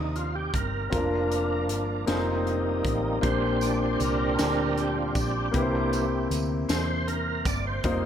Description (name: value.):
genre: slow gospel.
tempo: 52 BPM (dotted quarters).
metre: 6/8.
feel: straight.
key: Bb major.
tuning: A4 = 440 Hz.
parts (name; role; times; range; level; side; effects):
warm grand piano; accompaniment; 0.0-8.1 s; Bb2 to D5; -29 LUFS; left 2 dB; none.
overdriven tonewheel organ; sustained chords; 0.0-8.1 s; E3 to D5; -29 LUFS; right 2 dB; slow rotary speaker, chorus vibrato.
hollow-body short-scale fingered electric bass; bass; 0.0-8.1 s; F1 to E2; -31 LUFS; equal; none.
crisp fusion drum kit; drums; 0.2-8.0 s; hi-hat, kick drum, snare drum; -32 LUFS; equal; none.
tambourine; percussion; 3.6-7.8 s; none; -42 LUFS; right 7 dB; none.
room: wet plate reverb, RT60 2.7 s.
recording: dreamy mix soaked in reverb.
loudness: -24 LUFS.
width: side -9 dB against mid.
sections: 0.0-8.1 A section.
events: tonewheel organ solo 0.0-8.1.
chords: 0.0 Cm9; 0.9 Bb/F; 2.1 F7sus4; 3.2 Bb69; 5.5 C7.